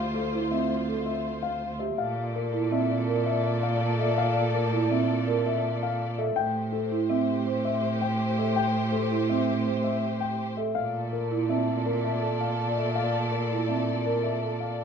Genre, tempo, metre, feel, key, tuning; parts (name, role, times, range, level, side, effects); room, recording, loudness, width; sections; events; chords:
classical, minimalist pattern music; 164 BPM; 6/4; straight; A4 = 440 Hz
dark concert grand piano; melody; 0.0-14.8 s; A4 to G5; -31 LUFS; left 10 dB
warm studio string section; sustained chords; 0.0-14.8 s; F4 to D5; -32 LUFS; left 2 dB
warm cello; bass; 0.0-14.8 s; D2 to Bb2; -29 LUFS; right 2 dB
marimba with soft mallets; arpeggios; 0.3-14.7 s; C4 to C5; -30 LUFS; right 8 dB
wet recital hall reverb, RT60 1.4 s; -24 LUFS; side -6 dB against mid
0.0-14.8 A section
0.0 Dm9; 2.0 Bbmaj7; 6.4 Am7; 10.8 Bbmaj7